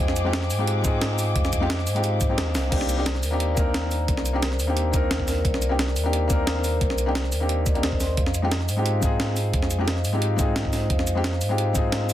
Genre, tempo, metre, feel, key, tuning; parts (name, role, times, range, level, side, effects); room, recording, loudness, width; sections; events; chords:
liquid drum and bass; 176 BPM; 4/4; straight; C minor; A4 = 440 Hz
felt-muted upright piano; accompaniment; 0.0-12.1 s; Ab3 to Bb4; -28 LUFS; left 2 dB; tape echo
rich studio string section; sustained chords; 0.0-2.7 s; Ab4 to D6; -33 LUFS; left 4 dB
vibraphone with medium mallets; arpeggios; 0.0-12.1 s; Bb4 to C6; -30 LUFS; left 2 dB; digital delay
warm sub bass; bass; 0.0-12.1 s; C2 to Ab2; -25 LUFS; equal; tube saturation
breakbeat sampler-style drum kit; drums; 0.1-12.1 s; cabasa, crash cymbal, hi-hat, snare drum; -28 LUFS; right 1 dB
electronic kick drum; drums; 0.8-11.8 s; -25 LUFS; equal
light reverb; dense, heavily limited modern master; -21 LUFS; side -12 dB against mid
0.0-2.7 A section; 2.7-12.1 A section
drop 0.0-2.7, 2.7-12.1; kick drops out 2.4-2.7; drum fill 2.5
0.0 Fm9; 2.7 Cm9; 8.2 Fm9